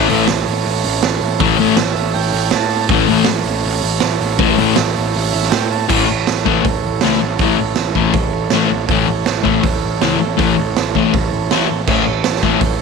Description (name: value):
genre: garage rock duo or trio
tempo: 160 BPM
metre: 4/4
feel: straight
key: A major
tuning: A4 = 440 Hz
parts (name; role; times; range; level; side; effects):
- overdriven combo organ; sustained chords; 0.0-12.8 s; E4 to A5; -21 LUFS; right 13 dB; none
- fuzz guitar; riff; 0.0-12.6 s; A2 to A3; -16 LUFS; left 13 dB; distortion
- fuzz picked electric bass; bass; 0.0-12.8 s; A1 to A2; -22 LUFS; equal; overdrive
- raw garage drum kit; drums; 0.1-12.7 s; crash cymbal, hi-hat, kick drum, snare drum; -18 LUFS; right 6 dB; none
room: light reverb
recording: 1960s-style stereo with parts hard left and right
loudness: -13 LUFS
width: side -4 dB against mid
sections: 0.0-5.9 A section; 5.9-12.8 B section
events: transistor combo organ fill 1.8-2.9, 5.2-5.9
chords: 0.0 A